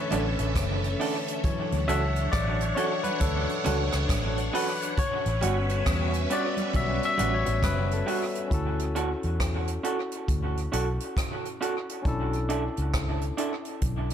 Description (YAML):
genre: lovers rock reggae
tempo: 68 BPM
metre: 4/4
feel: swing 62% on 16ths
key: D major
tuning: A4 = 440 Hz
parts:
  - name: phased string machine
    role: second line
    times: 0.0-8.5 s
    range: C#4 to F#5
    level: -33 LUFS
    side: right 1 dB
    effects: ensemble chorus, phaser, tape echo
  - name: barky tine electric piano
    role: accompaniment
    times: 0.0-14.1 s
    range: D3 to E5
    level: -31 LUFS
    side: left 4 dB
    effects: overdrive
  - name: electric guitar through a small old amp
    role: stabs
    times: 0.1-13.5 s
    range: G3 to A4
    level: -32 LUFS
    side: right 4 dB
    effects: spring reverb, tape echo
  - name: vintage muted fingered electric bass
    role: bass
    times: 0.1-14.1 s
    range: F#1 to E2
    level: -28 LUFS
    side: equal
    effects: none
  - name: jazz brush drum kit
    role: drums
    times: 0.1-14.1 s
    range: hi-hat, kick drum, rim click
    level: -31 LUFS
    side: equal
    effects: gated reverb, tape echo
  - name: congas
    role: percussion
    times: 0.1-7.9 s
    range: none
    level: -38 LUFS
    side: right 3 dB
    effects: none
room: light reverb, small room ambience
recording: none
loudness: -25 LUFS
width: side -9 dB against mid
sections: 0.0-8.5 A section; 8.5-14.1 B section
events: tine electric piano solo 0.0-8.5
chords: 0.0 Bm11; 1.4 Dmaj7; 5.0 A13; 8.5 Dmaj7; 12.1 Bm11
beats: 0.56 | 1.44 2.32 3.21 4.09 | 4.98 5.86 6.74 7.63 | 8.51 9.40 10.28 11.17 | 12.05 12.94 13.82